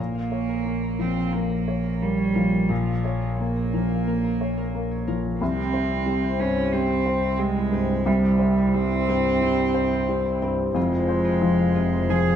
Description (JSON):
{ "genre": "neoclassical piano and strings", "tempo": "90 BPM", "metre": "4/4", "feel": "rubato", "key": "unclear", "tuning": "A4 = 441 Hz", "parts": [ { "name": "rich cello", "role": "second line", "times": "0.0-12.4 s", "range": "F3 to Ab4", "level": "-25 LUFS", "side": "right 4 dB", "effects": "none" }, { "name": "clear upright piano", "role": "accompaniment", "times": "0.0-12.4 s", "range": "C2 to Db5", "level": "-26 LUFS", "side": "left 2 dB", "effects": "none" }, { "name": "concert harp", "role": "arpeggios", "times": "0.0-12.4 s", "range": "C4 to Db6", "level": "-29 LUFS", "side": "left 3 dB", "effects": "none" }, { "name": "dark double bass", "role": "bass", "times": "0.0-12.4 s", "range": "F1 to C2", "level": "-27 LUFS", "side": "equal", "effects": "none" } ], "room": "wet stone room reverb, RT60 1.3 s", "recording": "band playing live in one room", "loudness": "-21 LUFS", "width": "side -9 dB against mid", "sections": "0.0-12.4 A section", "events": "none", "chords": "0.0 Bbm; 5.4 C; 10.8 Fm", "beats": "0.66 1.34 2.02 | 2.70 3.40 4.08 4.74 | 5.41 6.07 6.74 7.40 | 8.07 8.76 9.43 10.10 | 10.76 11.42 12.10" }